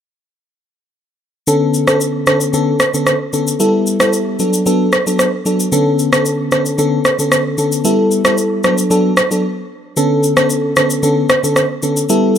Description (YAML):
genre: afrobeats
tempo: 113 BPM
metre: 4/4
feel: straight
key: B minor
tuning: A4 = 440 Hz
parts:
  - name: FM electric piano with soft pad layer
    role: accompaniment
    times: 1.5-12.4 s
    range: D3 to A4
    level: -14 LUFS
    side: left 1 dB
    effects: chorus
  - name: electronic shaker and rim click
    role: drums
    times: 1.5-12.4 s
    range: none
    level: -15 LUFS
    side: right 1 dB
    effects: none
room: light reverb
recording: none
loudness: -12 LUFS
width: side -8 dB against mid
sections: 1.5-12.4 A section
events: break 9.4-10.0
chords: 1.5 Bm9; 3.6 G69; 4.4 D6; 5.7 Bm9; 7.8 G69; 8.6 D6; 10.0 Bm9